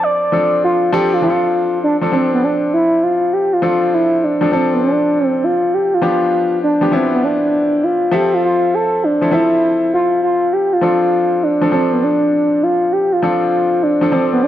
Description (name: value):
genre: R&B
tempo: 100 BPM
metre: 4/4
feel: swing 66% on 16ths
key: D dorian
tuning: A4 = 442 Hz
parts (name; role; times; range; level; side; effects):
- expressive synth lead; melody; 0.0-14.5 s; B3 to D5; -14 LUFS; equal; chorus
- bright concert grand piano; accompaniment; 0.0-14.5 s; F3 to E5; -19 LUFS; left 1 dB; none
room: moderate echo chamber reverb, RT60 1.5 s, small room ambience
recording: dark, warm production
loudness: -13 LUFS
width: side -12 dB against mid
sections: 0.0-1.2 A section; 1.2-14.5 B section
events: none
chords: 0.0 Dm7; 6.0 G7; 8.1 Fmaj7; 10.8 Dm7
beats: 0.02 0.62 | 1.22 1.82 2.42 3.02 | 3.62 4.22 4.82 5.42 | 6.02 6.62 7.22 7.82 | 8.42 9.02 9.62 10.22 | 10.82 11.42 12.02 12.62 | 13.22 13.82 14.42